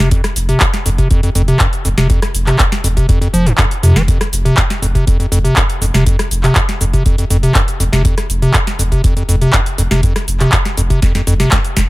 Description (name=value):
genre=acid house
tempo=121 BPM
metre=4/4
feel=straight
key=unclear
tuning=A4 = 439 Hz
part: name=acid bass, square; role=riff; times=0.0-11.8 s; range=F2 to F3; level=-15 LUFS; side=equal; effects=overdrive, vintage 12-bit sampler grit, sidechain pumping
part: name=warm sub bass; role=bass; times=0.0-11.8 s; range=F1 to F2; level=-16 LUFS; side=equal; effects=sidechain pumping
part: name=booming analog drum machine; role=drums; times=0.0-11.9 s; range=handclaps, hi-hat, rim click, shaker, snare drum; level=-17 LUFS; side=equal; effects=none
part: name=electronic kick drum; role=drums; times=0.1-11.9 s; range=none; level=-14 LUFS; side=equal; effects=none
room=little or no reverb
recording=none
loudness=-11 LUFS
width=side -19 dB against mid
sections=0.0-11.9 A section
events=drum fill 11.0-11.9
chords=0.0 F5